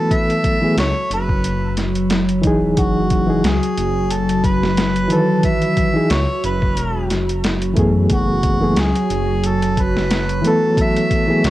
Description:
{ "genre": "trip hop", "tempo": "90 BPM", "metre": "4/4", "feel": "swing 55% on 16ths", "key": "F# dorian", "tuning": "A4 = 439 Hz", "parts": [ { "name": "mellow harmonica", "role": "melody", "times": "0.0-11.5 s", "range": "F#4 to E5", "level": "-23 LUFS", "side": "equal", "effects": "cassette tape, tape echo" }, { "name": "reed electric piano", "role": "accompaniment", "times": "0.0-11.4 s", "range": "D#3 to B4", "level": "-18 LUFS", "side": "equal", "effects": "tremolo, cassette tape" }, { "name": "warbly tape-like pad", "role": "sustained chords", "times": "0.0-11.5 s", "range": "F#3 to F#4", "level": "-21 LUFS", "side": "equal", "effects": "chorus, built-in reverb, cassette tape" }, { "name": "boom bap sampler-style drum kit", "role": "drums", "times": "0.1-11.5 s", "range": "hi-hat, kick drum, snare drum", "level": "-20 LUFS", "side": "equal", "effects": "overdrive" }, { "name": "dark detuned saw bass", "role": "bass", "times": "0.8-11.5 s", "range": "E1 to F#2", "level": "-22 LUFS", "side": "equal", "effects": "tube saturation" } ], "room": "little or no reverb", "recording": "home recording on cassette", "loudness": "-15 LUFS", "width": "side -15 dB against mid", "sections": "0.0-11.5 A section", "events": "none", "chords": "0.0 F#m11" }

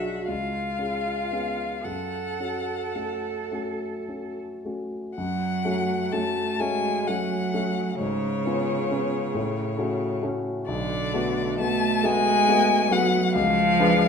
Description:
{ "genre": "classical, slow romantic movement for piano trio", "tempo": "35-46 BPM (dotted quarters)", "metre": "6/8", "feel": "rubato", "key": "F# minor", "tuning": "A4 = 438 Hz", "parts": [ { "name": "rich violin", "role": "melody", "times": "0.0-14.1 s", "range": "C#5 to A5", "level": "-26 LUFS", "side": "left 6 dB", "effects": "none" }, { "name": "rich cello", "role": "second line", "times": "0.0-14.1 s", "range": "C#3 to A4", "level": "-28 LUFS", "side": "right 8 dB", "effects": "none" }, { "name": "warm concert grand piano", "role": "accompaniment", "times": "0.0-14.1 s", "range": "B1 to B4", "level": "-27 LUFS", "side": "left 2 dB", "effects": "none" } ], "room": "wet recital hall reverb, RT60 1.5 s", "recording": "none", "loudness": "-23 LUFS", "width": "side -6 dB against mid", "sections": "0.0-5.2 A section; 5.2-14.1 B section", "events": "none", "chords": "0.3 C#7; 1.9 F#m; 8.0 C#7/G#; 9.4 F#m/A; 10.7 Bm7; 13.4 C#7b9" }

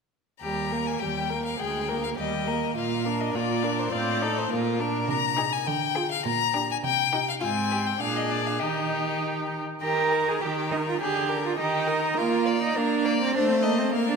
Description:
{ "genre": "quick classical-period movement for string quartet", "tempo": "103 BPM", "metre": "2/4", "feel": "straight", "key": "Eb major", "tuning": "A4 = 441 Hz", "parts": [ { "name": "clear violin", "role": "melody", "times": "0.4-14.2 s", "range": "Bb4 to Bb5", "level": "-29 LUFS", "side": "left 9 dB", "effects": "none" }, { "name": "clear violin", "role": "second line", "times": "0.4-14.2 s", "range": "F4 to Eb5", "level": "-30 LUFS", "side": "left 3 dB", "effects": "none" }, { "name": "rich viola", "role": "accompaniment", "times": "0.4-14.2 s", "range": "D3 to F4", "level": "-29 LUFS", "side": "right 2 dB", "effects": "none" }, { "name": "rich cello", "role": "bass", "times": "0.4-14.2 s", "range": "D2 to Bb4", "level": "-29 LUFS", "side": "right 5 dB", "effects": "none" } ], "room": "wet concert hall reverb, RT60 2.4 s", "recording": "minimal, uncompressed stereo recording", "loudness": "-23 LUFS", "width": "side -5 dB against mid", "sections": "0.4-9.8 A section; 9.8-14.2 A section", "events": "none", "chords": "0.4 Eb; 1.6 Bb7/D; 2.2 Eb; 2.8 Bb; 3.9 F7/A; 4.5 Bb; 5.1 Ab/C; 5.7 Ddim; 6.3 Gm/Bb; 6.8 Cm; 7.4 Fm/Ab (rootless); 8.0 Bb7; 8.6 Eb; 11.0 Bb7/D; 11.6 Eb; 12.2 Bb; 13.3 F7/A" }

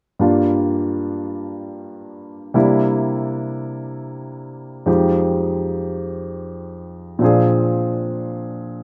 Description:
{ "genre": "jazz", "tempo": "51 BPM", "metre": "4/4", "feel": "swing 66% on 8ths", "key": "unclear", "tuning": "A4 = 440 Hz", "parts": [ { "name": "warm baby grand piano", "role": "accompaniment", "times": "0.2-8.8 s", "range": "F2 to Ab4", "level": "-21 LUFS", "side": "equal", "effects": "none" } ], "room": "light reverb", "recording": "none", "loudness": "-20 LUFS", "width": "mono", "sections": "0.2-8.8 A section", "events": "none", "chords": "0.2 Gm7; 2.5 C7; 4.9 Fm7; 7.2 Bb7" }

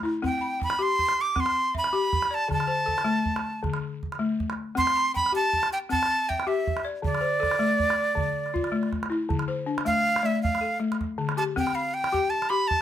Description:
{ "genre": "west african traditional, West African string and xylophone music", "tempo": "106 BPM (dotted quarters)", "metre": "12/8", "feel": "straight", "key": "D dorian", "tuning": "A4 = 438 Hz", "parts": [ { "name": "balafon", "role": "arpeggios", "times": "0.0-12.8 s", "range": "D3 to C6", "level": "-28 LUFS", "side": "left 4 dB", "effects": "none" }, { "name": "calabash", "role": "percussion", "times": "0.1-12.8 s", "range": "none", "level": "-32 LUFS", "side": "right 4 dB", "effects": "none" }, { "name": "breathy bright jazz flute", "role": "melody", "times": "0.3-12.8 s", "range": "D5 to D6", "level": "-24 LUFS", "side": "right 1 dB", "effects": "plate reverb" } ], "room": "light reverb", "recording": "none", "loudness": "-23 LUFS", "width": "side -10 dB against mid", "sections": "0.0-9.3 A section; 9.3-12.8 B section", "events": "flute solo 9.3-12.8", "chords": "0.2 C; 2.5 D5; 4.8 C; 7.0 Dm; 11.6 C5" }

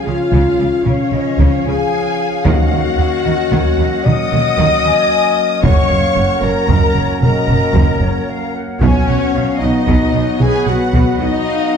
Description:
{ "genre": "cinematic, epic orchestral film score", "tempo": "76 BPM (dotted quarters)", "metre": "12/8", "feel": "straight", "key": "Eb minor", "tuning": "A4 = 440 Hz", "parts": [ { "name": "warm symphonic violin section", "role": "melody", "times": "0.0-11.8 s", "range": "Db5 to Eb6", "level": "-27 LUFS", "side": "left 4 dB", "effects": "none" }, { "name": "flute section", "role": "second line", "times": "0.0-11.8 s", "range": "B4 to Ab5", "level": "-25 LUFS", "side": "left 2 dB", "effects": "none" }, { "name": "warm symphonic violin section", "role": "second line", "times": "0.0-11.8 s", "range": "Db5 to Eb6", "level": "-25 LUFS", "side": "left 3 dB", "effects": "none" }, { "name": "warm studio viola section", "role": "accompaniment", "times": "0.0-11.8 s", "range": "Db4 to Eb5", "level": "-24 LUFS", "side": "right 1 dB", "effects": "none" }, { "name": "mellow French horn section", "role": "sustained chords", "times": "0.0-11.8 s", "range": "Db4 to Eb5", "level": "-18 LUFS", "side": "left 6 dB", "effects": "none" }, { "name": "pipe organ, stopped flute", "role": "sustained chords", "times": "0.0-11.8 s", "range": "Bb3 to Gb5", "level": "-25 LUFS", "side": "left 1 dB", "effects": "none" }, { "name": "warm trombone section", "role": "sustained chords", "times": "0.0-11.8 s", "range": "F3 to Db4", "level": "-24 LUFS", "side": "right 2 dB", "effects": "none" }, { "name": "clear studio double bass section", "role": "bass", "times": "0.1-11.3 s", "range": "Gb1 to Eb2", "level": "-19 LUFS", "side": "right 3 dB", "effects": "none" }, { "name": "rich symphonic cello section", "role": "bass", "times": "0.1-11.3 s", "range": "Gb2 to Eb3", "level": "-21 LUFS", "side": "right 3 dB", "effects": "none" }, { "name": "taiko ensemble", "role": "drums", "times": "0.3-11.4 s", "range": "none", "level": "-17 LUFS", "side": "equal", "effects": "none" }, { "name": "timpani", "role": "percussion", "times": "2.5-3.2 s", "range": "Eb3", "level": "-22 LUFS", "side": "left 1 dB", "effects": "none" } ], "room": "wet recital hall reverb, RT60 1.4 s", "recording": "dark, warm production", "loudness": "-12 LUFS", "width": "side -7 dB against mid", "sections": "0.0-11.8 A section", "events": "none", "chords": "0.0 Db; 2.5 Ebm7; 5.6 Gb; 8.8 B" }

